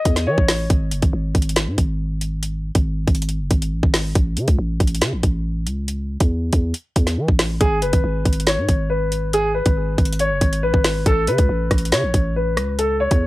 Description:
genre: hip hop, drill.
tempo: 139 BPM.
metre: 4/4.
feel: half-time.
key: unclear.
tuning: A4 = 440 Hz.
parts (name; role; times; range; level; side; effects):
dark concert grand piano; melody; 0.0-0.7, 7.6-13.3 s; G#4 to D#5; -21 LUFS; left 1 dB; low-pass filter.
growling 808-style bass; bass; 0.1-13.3 s; F#1 to E3; -22 LUFS; equal; none.
drill drum kit; drums; 0.1-13.2 s; hi-hat, kick drum, rim click, snare drum; -18 LUFS; equal; none.
room: little or no reverb.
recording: dry, gritty hardware recording.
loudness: -17 LUFS.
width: side -18 dB against mid.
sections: 0.0-13.3 A section.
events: break 0.7-7.6.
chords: 0.0 A; 0.7 N.C.; 4.2 A; 7.6 G#m; 11.1 A.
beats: 0.27 | 0.70 1.13 1.56 2.00 | 2.43 2.86 3.29 3.72 | 4.15 4.59 5.02 5.45 | 5.88 6.31 6.74 7.18 | 7.61 8.04 8.47 8.90 | 9.33 9.77 10.20 10.63 | 11.06 11.49 11.92 12.36 | 12.79 13.22.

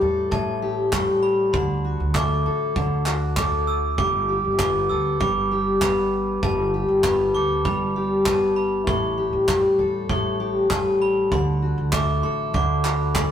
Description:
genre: acoustic pop.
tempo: 98 BPM.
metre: 4/4.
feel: straight.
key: G major.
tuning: A4 = 437 Hz.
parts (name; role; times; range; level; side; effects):
glockenspiel with brass mallets; second line; 0.0-13.3 s; A5 to E6; -27 LUFS; right 3 dB; none.
fingerpicked steel-string acoustic guitar; accompaniment; 0.0-13.3 s; A2 to A4; -22 LUFS; left 2 dB; none.
upright bass; bass; 0.0-13.3 s; G1 to E2; -28 LUFS; right 2 dB; none.
natural country drum kit; drums; 0.3-13.3 s; handclaps, kick drum; -26 LUFS; right 1 dB; none.
room: moderate stone room reverb, RT60 1.3 s.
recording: rough rehearsal-room recording, tube saturation.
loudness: -19 LUFS.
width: side -9 dB against mid.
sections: 0.0-13.3 A section.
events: none.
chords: 0.0 A7; 1.5 D7; 4.0 Gadd9; 8.9 A7; 11.3 D7.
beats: 0.32 0.93 | 1.54 2.15 2.76 3.37 | 3.98 4.59 5.20 5.82 | 6.43 7.04 7.65 8.26 | 8.87 9.48 10.10 10.71 | 11.32 11.93 12.54 13.15.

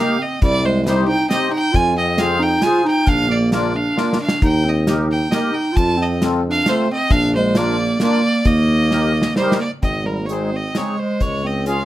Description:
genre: alpine folk, alpine dance band.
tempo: 134 BPM.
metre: 3/4.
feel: straight.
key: Eb major.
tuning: A4 = 440 Hz.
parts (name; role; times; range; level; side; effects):
clear fiddle; melody; 0.0-11.8 s; Bb4 to A5; -21 LUFS; right 1 dB; none.
mellow clarinet; second line; 0.0-11.8 s; G3 to F4; -20 LUFS; right 2 dB; none.
accordion; accompaniment; 0.0-11.8 s; C4 to C5; -23 LUFS; left 4 dB; light tremolo tuning.
warm tuba; bass; 0.4-11.8 s; Ab1 to F2; -21 LUFS; equal; none.
loose indie drum kit; drums; 0.4-11.8 s; hi-hat, kick drum, snare drum; -20 LUFS; equal; none.
room: light reverb.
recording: none.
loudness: -15 LUFS.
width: side -14 dB against mid.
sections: 0.0-9.8 A section; 9.8-11.8 B section.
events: drum fill 4.0-4.4, 8.9-9.8.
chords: 0.4 Cm; 1.8 Fm; 3.1 Bb; 4.4 Eb; 5.8 F; 7.1 Bb; 8.4 Eb; 9.8 Ab; 11.2 Db.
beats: | 0.42 0.87 1.31 | 1.75 2.20 2.64 | 3.08 3.52 3.97 | 4.43 4.88 5.33 | 5.78 6.22 6.67 | 7.11 7.55 8.00 | 8.45 8.90 9.36 | 9.82 10.28 10.74 | 11.20 11.66.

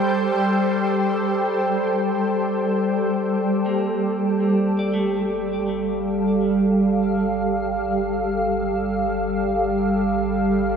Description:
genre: ambient.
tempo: free time.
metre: none.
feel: none.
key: G minor.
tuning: A4 = 440 Hz.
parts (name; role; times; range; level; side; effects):
shimmering ambient pad; sustained chords; 0.0-10.8 s; G3 to G5; -19 LUFS; right 1 dB; chorus, built-in reverb.
overtone-sweeping drone; drone; 0.0-2.9, 10.7-10.8 s; G3; -29 LUFS; left 4 dB; chorus, built-in reverb.
deep rumbling drone; bass; 4.8-10.8 s; G1; -37 LUFS; left 1 dB; built-in reverb.
clean electric guitar; arpeggios; 3.7-7.4 s; A3 to D5; -36 LUFS; left 1 dB; ping-pong delay.
room: wet lush hall reverb, RT60 3.0 s.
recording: dreamy mix soaked in reverb.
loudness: -19 LUFS.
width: side -6 dB against mid.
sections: 0.0-2.8 A section; 2.8-10.8 B section.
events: filter sweep on ambient pad 0.0-2.8; fade-in on clean electric guitar 2.8-10.8; fade-in on synth drone 2.8-10.8.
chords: 0.0 N.C.; 2.8 Gm7.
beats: free time.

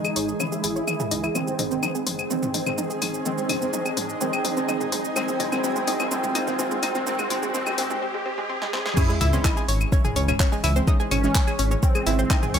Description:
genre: melodic techno.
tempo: 126 BPM.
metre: 4/4.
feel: straight.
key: C# harmonic minor.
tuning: A4 = 440 Hz.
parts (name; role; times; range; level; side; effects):
wide unison lead; melody; 0.0-12.6 s; B#3 to E4; -29 LUFS; right 1 dB; ensemble chorus, sidechain pumping, digital delay.
dark analog pad; sustained chords; 0.0-12.6 s; E3 to G#4; -35 LUFS; equal; chorus, vintage 12-bit sampler grit, sidechain pumping.
analog pluck; arpeggios; 0.0-12.6 s; G#3 to C#6; -30 LUFS; equal; chorus, sidechain pumping, tape echo.
deep house drum kit; drums; 0.0-12.6 s; claves, crash cymbal, handclaps, hi-hat, shaker, snare drum, toms; -28 LUFS; left 1 dB; overdrive.
riser and sub drop; sound effects; 0.6-10.9 s; none; -33 LUFS; equal; none.
granular cloud pad; texture; 0.0-12.6 s; G#3 to D#6; -34 LUFS; right 2 dB; built-in reverb, sidechain pumping.
dark detuned saw bass; bass; 0.2-12.6 s; F#1 to G#2; -26 LUFS; equal; sidechain pumping.
synth brass stab; stabs; 1.4-12.6 s; C#3 to C#4; -32 LUFS; right 1 dB; chorus, phaser, sidechain pumping, tape echo.
electronic kick drum; drums; 9.0-12.4 s; none; -20 LUFS; equal; none.
room: moderate lush hall reverb, RT60 2.2 s.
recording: high-pass filter.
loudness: -21 LUFS.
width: side -8 dB against mid.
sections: 0.0-9.0 A section; 9.0-12.6 B section.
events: build-up 0.0-9.0; drum fill 0.0-8.0, 8.6-9.0; filter sweep on synth arpeggio sound 0.0-9.0; filter sweep on analog synth lead 0.0-9.0; filter sweep on synth stab 0.0-9.0; riser 0.6-9.0; drop 9.0-12.6; impact 9.0-10.9.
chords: 0.0 C#m; 1.4 G#; 9.0 C#m.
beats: 0.40 0.88 | 1.35 1.83 2.30 2.78 | 3.26 3.73 4.21 4.68 | 5.16 5.64 6.11 6.59 | 7.07 7.54 8.02 8.49 | 8.97 9.45 9.92 10.40 | 10.88 11.35 11.83 12.30.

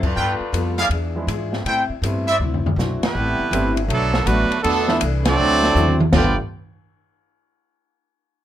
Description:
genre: jazz, big band swing.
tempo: 161 BPM.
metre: 4/4.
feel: swing 65% on 8ths.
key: unclear.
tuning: A4 = 440 Hz.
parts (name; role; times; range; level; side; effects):
bright saxophone section; melody; 0.0-0.8 s; A3 to B4; -28 LUFS; left 3 dB; none.
picked steel-string acoustic guitar; accompaniment; 0.0-6.3 s; A2 to A4; -28 LUFS; left 4 dB; none.
upright bass; bass; 0.0-6.4 s; G1 to A2; -23 LUFS; equal; none.
open jazz drum kit; drums; 0.0-6.2 s; crash cymbal, hi-hat, kick drum, ride cymbal, snare drum, toms; -23 LUFS; equal; none.
clear trumpet section; stabs; 0.2-2.4 s; E4 to G5; -20 LUFS; equal; none.
warm baby grand piano; accompaniment; 1.2-6.4 s; E3 to G4; -26 LUFS; right 2 dB; none.
brilliant trumpet section; melody; 3.0-6.4 s; F#3 to G5; -20 LUFS; right 3 dB; none.
clear trombone section; second line; 3.0-6.4 s; G2 to D4; -25 LUFS; right 3 dB; none.
room: light reverb.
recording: rough home demo mix.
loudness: -17 LUFS.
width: side -11 dB against mid.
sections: 0.0-3.2 A section; 3.2-6.1 B section; 6.1-7.6 C section.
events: band accent 0.0, 3.0, 5.2; drum fill 2.4-2.8, 5.8-6.1.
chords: 0.2 G9; 0.9 E7b9; 1.7 Am7; 2.4 D9; 3.2 Am7; 3.9 Bm7; 4.6 E7sus4; 5.4 D9; 6.1 G9.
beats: | 0.17 0.54 0.91 1.29 | 1.66 2.04 2.41 2.78 | 3.15 3.53 3.90 4.27 | 4.64 5.02 5.39 5.76 | 6.13.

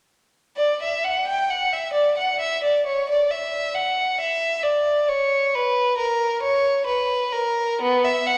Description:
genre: classical, baroque-style suite movement for unaccompanied violin.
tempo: 67 BPM.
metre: 4/4.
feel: rubato.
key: B minor.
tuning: A4 = 439 Hz.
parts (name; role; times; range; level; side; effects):
rich violin; solo; 0.6-8.4 s; B3 to G5; -22 LUFS; equal; none.
room: wet recital hall reverb, RT60 1.8 s.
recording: none.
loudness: -22 LUFS.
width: mono.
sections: 0.6-8.4 A section.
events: none.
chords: none.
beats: | 0.57 1.49 2.40 3.30 | 4.19 5.09 5.98 6.87 | 7.79.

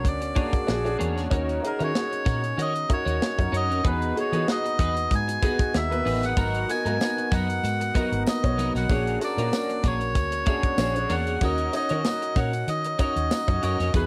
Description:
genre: polished 1980s jazz-funk pop.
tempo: 95 BPM.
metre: 4/4.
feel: swing 54% on 16ths.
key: unclear.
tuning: A4 = 441 Hz.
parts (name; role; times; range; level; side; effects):
melodica; melody; 0.0-14.1 s; A#4 to G#5; -30 LUFS; equal; none.
clear baby grand piano; accompaniment; 0.0-14.1 s; D#3 to C#5; -31 LUFS; equal; analog chorus, cassette tape.
twelve-string electric guitar; riff; 0.0-14.1 s; F#3 to C#5; -35 LUFS; equal; ensemble chorus, cassette tape.
vintage muted fingered electric bass; bass; 0.0-14.1 s; G#1 to E3; -31 LUFS; equal; none.
tight funk drum kit; drums; 0.0-14.1 s; hi-hat, kick drum, snare drum; -29 LUFS; equal; cassette tape.
tambourine; percussion; 6.4-14.1 s; none; -49 LUFS; equal; none.
room: light reverb.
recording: home recording on cassette.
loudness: -25 LUFS.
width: mono.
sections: 0.0-14.1 A section.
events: none.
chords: 0.0 A#7alt; 1.3 D#m7; 3.8 Emaj7; 6.4 G#m9; 8.9 A#7alt; 11.4 D#m7.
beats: 0.05 0.68 | 1.32 1.95 2.58 3.21 | 3.84 4.47 5.11 5.74 | 6.37 7.00 7.63 8.26 | 8.89 9.53 10.16 10.79 | 11.42 12.05 12.68 13.31 | 13.94.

